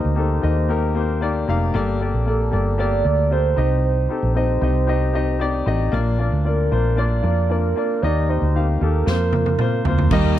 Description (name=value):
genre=piano-driven pop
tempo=115 BPM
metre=4/4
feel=straight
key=Bb major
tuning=A4 = 435 Hz
part: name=hollow clarinet-like synth lead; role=melody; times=0.0-9.8 s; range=A4 to D5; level=-24 LUFS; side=right 5 dB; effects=chorus, phaser
part: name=warm upright piano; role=accompaniment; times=0.0-10.4 s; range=G2 to F5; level=-23 LUFS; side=left 5 dB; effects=none
part: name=woody fretless electric bass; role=bass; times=0.0-10.4 s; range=F1 to F2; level=-20 LUFS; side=right 1 dB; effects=wide subtle chorus
part: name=natural country drum kit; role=drums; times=9.1-10.2 s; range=crash cymbal, kick drum, snare drum, toms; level=-20 LUFS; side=right 1 dB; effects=none
part: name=warm studio string section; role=sustained chords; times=10.1-10.4 s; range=Eb3 to Bb3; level=-28 LUFS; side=right 1 dB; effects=stereo widening
part: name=fingerpicked steel-string acoustic guitar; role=riff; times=10.1-10.4 s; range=Eb3 to Bb4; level=-20 LUFS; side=right 5 dB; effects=none
room=light reverb, small room ambience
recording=none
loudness=-17 LUFS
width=side -12 dB against mid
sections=0.0-10.1 A section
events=drum fill 9.1-10.1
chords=0.0 Eb; 1.7 Gmadd9; 3.6 Cm; 5.9 Bb; 8.0 Eb; 9.1 Fsus4